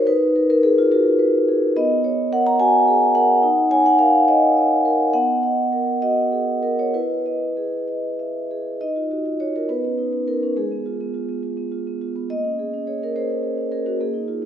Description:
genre	classical, contemporary piece for solo vibraphone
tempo	63-72 BPM (dotted quarters)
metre	6/8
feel	rubato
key	Eb minor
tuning	A4 = 440 Hz
part	vibraphone with soft mallets	solo	0.0-14.5 s	Ab3 to A#5	-17 LUFS	equal	none
room	wet recital hall reverb, RT60 1.8 s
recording	recorded in a church or concert hall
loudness	-17 LUFS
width	side -9 dB against mid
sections	0.0-8.8 A section; 8.8-14.5 B section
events	none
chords	0.1 Abm9/Eb; 1.8 Bmaj9; 3.4 Eb5; 5.1 Bmaj7; 6.9 Emaj7; 8.8 Ebmadd9; 9.7 Badd9; 10.6 Abm6; 12.3 Bbm9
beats	| 0.08 0.93 | 1.77 2.60 | 3.44 4.29 | 5.14 6.01 | 6.93 7.87 | 8.80 9.68 | 10.56 11.42 | 12.29 13.15 | 13.99

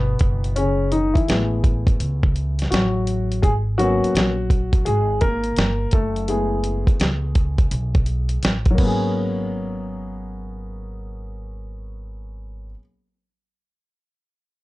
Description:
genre	hip hop, jazz-hop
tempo	84 BPM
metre	4/4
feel	swing 65% on 16ths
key	G# phrygian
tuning	A4 = 440 Hz
part	dark baby grand piano	accompaniment	0.0-12.8 s	B2 to A#4	-23 LUFS	left 1 dB	plate reverb
part	upright bass	bass	0.0-12.7 s	F#1 to C#2	-24 LUFS	equal	none
part	dusty soul sampler-style drum kit	drums	0.2-9.0 s	crash cymbal, hi-hat, kick drum, snare drum	-19 LUFS	equal	vintage 12-bit sampler grit
room	moderate small room reverb, RT60 0.5 s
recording	dark, warm production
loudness	-18 LUFS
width	side -19 dB against mid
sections	0.0-9.1 A section; 9.1-12.0 B section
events	grand piano solo 0.0-9.1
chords	0.2 F#m11; 3.4 G#m11; 5.9 F#m11; 8.8 G#m11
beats	| 0.57 1.28 2.00 2.71 | 3.43 4.14 4.86 5.57 | 6.28 7.00 7.71 8.43 | 9.14 9.86 10.57 11.28

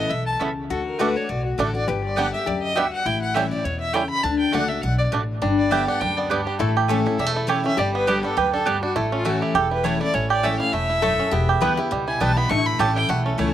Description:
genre	bluegrass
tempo	203 BPM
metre	4/4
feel	swing 55% on 8ths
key	unclear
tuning	A4 = 441 Hz
part	warm fiddle	melody	0.0-13.5 s	E4 to C#6	-25 LUFS	left 1 dB	none
part	lap resonator guitar	second line	0.0-13.5 s	D4 to B4	-28 LUFS	left 7 dB	none
part	picked steel-string acoustic guitar	accompaniment	0.0-13.5 s	E2 to G4	-28 LUFS	left 4 dB	none
part	upright bass	bass	0.0-13.5 s	E1 to E2	-27 LUFS	equal	none
part	bluegrass banjo	arpeggios	0.4-13.5 s	G3 to G4	-24 LUFS	right 6 dB	slapback echo
part	mandolin	stabs	0.4-13.5 s	A3 to B5	-28 LUFS	right 4 dB	slapback echo
room	little or no reverb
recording	recorded outdoors, with no room sound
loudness	-19 LUFS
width	side -11 dB against mid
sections	0.0-5.4 A section; 5.4-13.5 B section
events	none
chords	0.0 Aadd9; 0.7 D; 1.9 G; 3.1 A7; 4.2 D; 5.4 G; 6.6 A; 7.8 Gadd9; 9.0 A; 11.3 Em; 12.5 A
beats	0.11 0.41 | 0.70 0.99 1.29 1.58 | 1.88 2.17 2.47 2.76 | 3.06 3.35 3.65 3.94 | 4.24 4.53 4.83 5.12 | 5.42 5.71 6.01 6.31 | 6.60 6.90 7.19 7.49 | 7.78 8.08 8.37 8.67 | 8.96 9.26 9.55 9.85 | 10.14 10.44 10.73 11.03 | 11.32 11.62 11.91 12.21 | 12.51 12.80 13.10 13.39

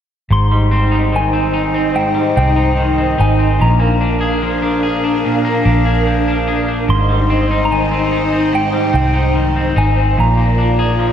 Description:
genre	dream pop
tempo	73 BPM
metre	4/4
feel	straight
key	Ab lydian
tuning	A4 = 438 Hz
part	soft synth bell	melody	0.3-11.1 s	G5 to C6	-20 LUFS	equal	chorus, phaser, diffuse ambient delay
part	string machine, violas	sustained chords	0.3-11.1 s	D4 to Bb5	-18 LUFS	equal	ensemble chorus
part	electric guitar at the edge of break-up	arpeggios	0.3-11.1 s	Ab2 to Ab4	-19 LUFS	left 2 dB	wide subtle chorus, diffuse ambient delay
part	vintage muted fingered electric bass	bass	0.3-11.1 s	Ab1 to C2	-16 LUFS	equal	none
room	wet lush hall reverb, RT60 2.4 s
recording	dreamy mix soaked in reverb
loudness	-12 LUFS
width	side -9 dB against mid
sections	0.3-11.1 A section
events	none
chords	0.3 Abmaj7; 3.6 Bb7; 6.9 Abmaj7; 10.2 Bb7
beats	| 0.31 1.13 1.96 2.78 | 3.60 4.42 5.24 6.07 | 6.89 7.71 8.53 9.35 | 10.17 11.00

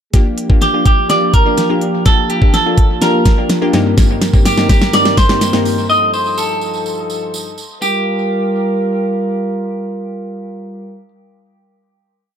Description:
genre	dance-pop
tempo	125 BPM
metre	4/4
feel	straight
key	G minor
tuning	A4 = 441 Hz
part	glassy wavetable pluck	accompaniment	0.1-5.8 s	G2 to A4	-18 LUFS	left 2 dB	chorus, sidechain pumping, dub echo
part	mellow brass ensemble	sustained chords	0.1-11.1 s	G2 to Bb4	-20 LUFS	right 1 dB	stereo widening, sidechain pumping
part	pop drum kit	drums	0.1-5.8 s	hi-hat, kick drum, snare drum	-12 LUFS	equal	none
part	clean electric guitar	melody	0.6-11.1 s	G4 to Eb5	-17 LUFS	right 2 dB	dub echo
part	tambourine	percussion	4.0-8.0 s	none	-29 LUFS	right 7 dB	dub echo
room	light reverb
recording	echo-heavy mix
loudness	-11 LUFS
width	side -8 dB against mid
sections	0.1-7.8 build; 7.8-11.7 final chord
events	build-up 0.1-7.8; drum fill 0.1-5.9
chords	0.1 Gm7; 3.7 Cm7/G; 5.9 F7/G; 7.8 Gm7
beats	| 0.14 0.62 1.10 1.58 | 2.06 2.54 3.02 3.50 | 3.98 4.46 4.94 5.42 | 5.90 6.38 6.86 7.34 | 7.82 8.30 8.78 9.26 | 9.74 10.22 10.70

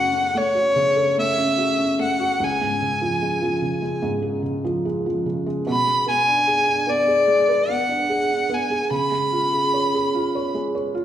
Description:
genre	acoustic folk-pop ballad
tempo	74 BPM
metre	4/4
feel	straight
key	unclear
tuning	A4 = 442 Hz
part	rich violin	melody	0.0-10.5 s	C#5 to B5	-20 LUFS	left 1 dB	none
part	felt-muted upright piano	accompaniment	0.0-11.0 s	C#2 to C#5	-23 LUFS	right 2 dB	none
room	wet recital hall reverb, RT60 1.5 s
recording	recorded in a church or concert hall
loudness	-18 LUFS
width	side -10 dB against mid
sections	0.0-11.0 A section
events	none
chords	0.0 F#m; 2.4 C#; 5.7 G#dim/B; 8.9 C#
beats	0.77 1.58 | 2.40 3.22 4.03 4.85 | 5.66 6.47 7.28 8.10 | 8.91 9.73 10.55

